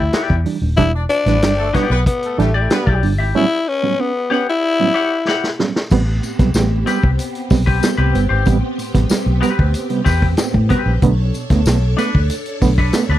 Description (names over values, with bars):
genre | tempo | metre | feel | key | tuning
funk | 94 BPM | 4/4 | straight | unclear | A4 = 440 Hz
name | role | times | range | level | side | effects
growling tenor saxophone | melody | 0.0-5.6 s | G3 to E4 | -18 LUFS | left 3 dB | none
vintage muted fingered electric bass | bass | 0.0-13.2 s | D#1 to A2 | -16 LUFS | equal | none
semi-hollow electric guitar | accompaniment | 0.1-13.2 s | C4 to F#5 | -22 LUFS | left 5 dB | spring reverb
vintage drum kit | drums | 0.1-13.1 s | crash cymbal, hi-hat, kick drum, snare drum | -18 LUFS | equal | none
reed electric piano | stabs | 0.5-13.2 s | A2 to D4 | -19 LUFS | right 6 dB | overdrive, fast tremolo
warm horn section | second line | 0.9-3.0 s | G3 to D5 | -25 LUFS | equal | none
string machine, violins | sustained chords | 5.9-13.2 s | B3 to C#5 | -26 LUFS | equal | phaser, ensemble chorus
tambourine | percussion | 5.9-13.1 s | none | -33 LUFS | left 5 dB | none
room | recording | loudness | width
little or no reverb | dry, close 1970s-style studio recording | -14 LUFS | side -13 dB against mid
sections
0.0-5.9 A section; 5.9-13.2 B section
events
drum fill 5.3-5.9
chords
0.0 Em7; 3.3 A13; 5.9 Am9; 11.0 Bm7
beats
0.13 | 0.78 1.42 2.06 2.70 | 3.35 3.99 4.63 5.27 | 5.91 6.55 7.19 7.83 | 8.47 9.11 9.75 10.39 | 11.03 11.67 12.30 12.94